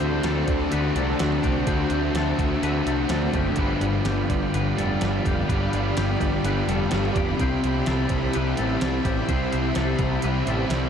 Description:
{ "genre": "rock, shoegaze and dream pop", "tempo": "126 BPM", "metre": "4/4", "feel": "straight", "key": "unclear", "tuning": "A4 = 439 Hz", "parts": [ { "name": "string machine, violas", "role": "sustained chords", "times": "0.0-10.9 s", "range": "F#4 to B5", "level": "-31 LUFS", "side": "equal", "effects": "ensemble chorus" }, { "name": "twangy electric guitar", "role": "arpeggios", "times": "0.0-10.9 s", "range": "G4 to C5", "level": "-34 LUFS", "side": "left 6 dB", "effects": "lush chorus, tape echo" }, { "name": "overdriven electric guitar", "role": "riff", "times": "0.0-10.9 s", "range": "G2 to G4", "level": "-28 LUFS", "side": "right 6 dB", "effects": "reverse reverb" }, { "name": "thick fuzz guitar", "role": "riff", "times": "0.0-10.9 s", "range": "G2 to D4", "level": "-26 LUFS", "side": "left 5 dB", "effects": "distortion, lush chorus" }, { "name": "growling picked electric bass", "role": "bass", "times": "0.0-10.9 s", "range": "F1 to D2", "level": "-27 LUFS", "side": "right 1 dB", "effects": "overdrive" }, { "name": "clean 12-bit digital drum machine", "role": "drums", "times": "0.2-10.8 s", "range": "hi-hat, kick drum, snare drum", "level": "-30 LUFS", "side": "right 1 dB", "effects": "none" } ], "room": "wet huge ambient reverb, RT60 7.5 s", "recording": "dreamy mix soaked in reverb", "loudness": "-21 LUFS", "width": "side -8 dB against mid", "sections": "0.0-10.9 A section", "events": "none", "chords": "0.0 D7; 3.6 G7; 7.4 Cmaj7", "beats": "0.25 0.73 1.21 | 1.68 2.16 2.64 3.11 | 3.59 4.07 4.54 5.02 | 5.49 5.97 6.44 6.92 | 7.39 7.87 8.34 8.81 | 9.29 9.76 10.23 10.71" }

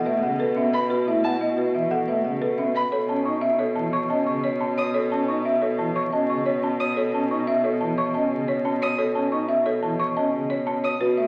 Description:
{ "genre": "classical, minimalist pattern music", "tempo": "178 BPM", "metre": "6/4", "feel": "straight", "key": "unclear", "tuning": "A4 = 440 Hz", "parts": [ { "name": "folk marimba with hard mallets", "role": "melody", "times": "0.0-11.3 s", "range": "B4 to C#6", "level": "-28 LUFS", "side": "equal", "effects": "none" }, { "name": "folk marimba with medium mallets", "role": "arpeggios", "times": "0.0-11.2 s", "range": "C#4 to D#5", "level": "-30 LUFS", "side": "equal", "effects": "none" }, { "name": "rich cello", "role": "bass", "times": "0.0-11.3 s", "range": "B2", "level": "-30 LUFS", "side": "equal", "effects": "none" }, { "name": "pipe organ, flutes", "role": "accompaniment", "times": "0.1-11.3 s", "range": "C#3 to D#4", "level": "-32 LUFS", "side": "equal", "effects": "none" }, { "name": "rich violin", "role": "arpeggios", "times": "0.7-11.0 s", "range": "A5 to D#6", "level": "-32 LUFS", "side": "equal", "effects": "none" } ], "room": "wet recital hall reverb, RT60 1.6 s", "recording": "very old 78 rpm record, vinyl crackle", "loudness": "-24 LUFS", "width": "mono", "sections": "0.0-11.3 A section", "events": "none", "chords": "0.0 B9sus4; 2.9 A/B", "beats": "0.22 0.56 | 0.90 1.24 1.57 1.91 2.25 2.58 | 2.92 3.26 3.60 3.93 4.27 4.61 | 4.94 5.28 5.62 5.95 6.29 6.63 | 6.97 7.30 7.64 7.98 8.31 8.65 | 8.99 9.32 9.66 10.00 10.34 10.67 | 11.01" }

